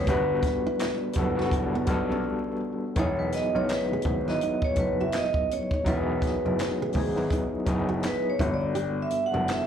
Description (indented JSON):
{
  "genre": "R&B, neo-soul",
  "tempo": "83 BPM",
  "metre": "4/4",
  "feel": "swing 58% on 16ths",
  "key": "unclear",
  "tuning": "A4 = 441 Hz",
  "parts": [
    { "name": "vibraphone with medium hard mallets", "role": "melody", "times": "0.0-9.6 s", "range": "G#4 to F#5", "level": "-29 LUFS", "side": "right 1 dB", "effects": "slapback echo" },
    { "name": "nylon-string guitar", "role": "second line", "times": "0.0-9.5 s", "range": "B3 to G#4", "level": "-36 LUFS", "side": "right 6 dB", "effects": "tape echo" },
    { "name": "overdriven tine electric piano", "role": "accompaniment", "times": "0.0-9.7 s", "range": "F#3 to B4", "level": "-30 LUFS", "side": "left 2 dB", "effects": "medium tremolo, slapback echo" },
    { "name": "warm grand piano", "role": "bass", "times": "0.0-9.5 s", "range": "E1 to B1", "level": "-31 LUFS", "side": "equal", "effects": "none" },
    { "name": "compact cocktail drum kit", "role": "drums", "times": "0.1-9.7 s", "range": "handclaps, hi-hat, kick drum, snare drum", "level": "-30 LUFS", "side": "equal", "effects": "none" }
  ],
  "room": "moderate club reverb, RT60 0.5 s",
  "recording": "live gig heard through the venue's PA, club reverb, vinyl crackle",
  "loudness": "-24 LUFS",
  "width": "side -8 dB against mid",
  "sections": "0.0-3.0 A section; 3.0-9.7 B section",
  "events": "break 2.2-3.0; vibraphone solo 3.0-9.7",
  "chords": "0.0 Gmaj9; 3.0 Emaj9; 8.4 Gmaj9",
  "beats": "| 0.08 0.80 1.52 2.24 | 2.97 3.69 4.41 5.14 | 5.86 6.58 7.30 8.03 | 8.75 9.47"
}